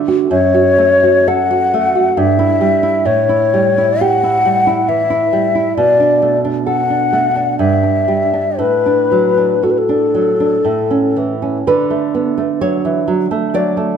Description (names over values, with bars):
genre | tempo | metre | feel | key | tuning
romantic duo for flute and classical guitar | 57-70 BPM | 3/4 | rubato | D major | A4 = 439 Hz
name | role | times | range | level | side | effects
nylon-string guitar | accompaniment | 0.0-14.0 s | F#2 to D5 | -15 LUFS | right 4 dB | none
mellow hollow silver concert flute | melody | 0.3-11.2 s | A4 to F#5 | -13 LUFS | left 4 dB | none
room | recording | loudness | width
moderate recital hall reverb, RT60 1.6 s | none | -11 LUFS | side -7 dB against mid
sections
0.0-11.7 A section; 11.7-14.0 B section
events
none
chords
0.3 F#m; 2.2 Em/G; 3.1 A7; 5.8 Bm7; 7.6 Em7/G; 8.6 D/A; 10.7 A; 11.7 D